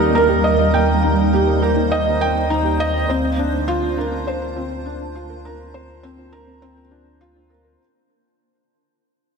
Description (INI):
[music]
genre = piano and strings electronica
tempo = 102 BPM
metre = 4/4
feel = straight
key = unclear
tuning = A4 = 440 Hz
[part]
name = granular cloud pad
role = sustained chords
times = 0.0-7.8 s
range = G3 to C5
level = -21 LUFS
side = right 2 dB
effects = built-in reverb
[part]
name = felt-muted upright piano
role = riff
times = 0.0-7.8 s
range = C4 to G5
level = -20 LUFS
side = equal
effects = ping-pong delay
[part]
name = dark detuned saw bass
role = bass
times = 0.0-7.8 s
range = D2 to Eb2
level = -23 LUFS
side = right 1 dB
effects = none
[part]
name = soft round pluck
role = arpeggios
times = 0.3-7.7 s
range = C4 to G5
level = -29 LUFS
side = right 2 dB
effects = none
[sound]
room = moderate huge ambient reverb, RT60 4.4 s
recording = none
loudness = -16 LUFS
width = side -5 dB against mid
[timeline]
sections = 0.0-7.8 A section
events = drop 0.0-7.8; fade-out 0.0-7.8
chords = 0.0 Eb; 3.1 Bbadd9/D